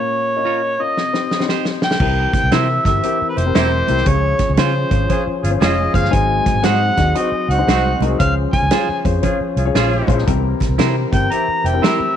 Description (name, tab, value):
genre	uptempo 1960s-style soul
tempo	116 BPM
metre	4/4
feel	swing 64% on 8ths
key	unclear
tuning	A4 = 437 Hz
part	mellow harmonica	melody	0.0-12.2 s	B4 to Bb5	-19 LUFS	equal	none
part	warm baby grand piano	accompaniment	0.0-12.1 s	Ab2 to Eb5	-23 LUFS	left 12 dB	none
part	semi-hollow electric guitar	stabs	0.5-12.0 s	Db4 to Db5	-25 LUFS	right 12 dB	none
part	natural country drum kit	drums	1.0-12.0 s	crash cymbal, hi-hat, kick drum, snare drum	-20 LUFS	right 1 dB	vintage 12-bit sampler grit
part	mellow tonewheel organ	sustained chords	2.0-12.2 s	E3 to Bb4	-27 LUFS	right 1 dB	slow rotary speaker, chorus vibrato
part	vintage muted fingered electric bass	bass	2.0-12.0 s	E1 to Db3	-19 LUFS	equal	none
part	congas	percussion	2.3-12.2 s	none	-29 LUFS	right 12 dB	none
part	warm horn section	second line	3.0-12.2 s	C4 to Bb4	-25 LUFS	equal	none
room	light reverb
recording	1960s-style stereo with parts hard left and right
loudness	-14 LUFS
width	side -9 dB against mid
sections	0.0-2.0 A section; 2.0-12.2 B section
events	break 0.0-2.0; drum fill 1.0-2.0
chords	0.0 Bbm; 1.0 Cm; 2.0 C7; 4.1 Dbmaj7; 6.1 Ab7; 8.2 Dbmaj7; 10.3 C7